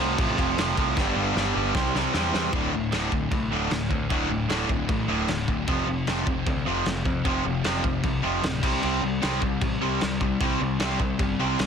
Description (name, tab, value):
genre	punk rock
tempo	152 BPM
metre	4/4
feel	straight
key	unclear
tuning	A4 = 440 Hz
part	distorted electric guitar	riff	0.0-11.7 s	D2 to C4	-29 LUFS	left 12 dB	overdrive
part	fuzz guitar	riff	0.0-11.7 s	D2 to C5	-32 LUFS	equal	distortion
part	raw garage guitar	riff	0.0-11.7 s	D2 to C4	-29 LUFS	right 16 dB	overdrive
part	overdriven picked electric bass	bass	0.0-11.7 s	D1 to F2	-31 LUFS	equal	none
part	loose indie drum kit	drums	0.2-11.7 s	crash cymbal, kick drum, snare drum	-28 LUFS	equal	none
room	light reverb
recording	dense, heavily limited modern master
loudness	-23 LUFS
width	side -7 dB against mid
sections	0.0-2.5 A section; 2.5-11.7 B section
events	drum fill 1.0-2.5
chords	0.0 F; 1.0 G; 1.8 C; 2.5 D5; 5.7 F5; 8.6 C5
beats	0.18 0.57 | 0.96 1.36 1.75 2.14 | 2.54 2.93 3.32 3.72 | 4.11 4.50 4.90 5.29 | 5.68 6.08 6.47 6.87 | 7.26 7.65 8.05 8.44 | 8.84 9.23 9.62 10.02 | 10.41 10.80 11.20 11.59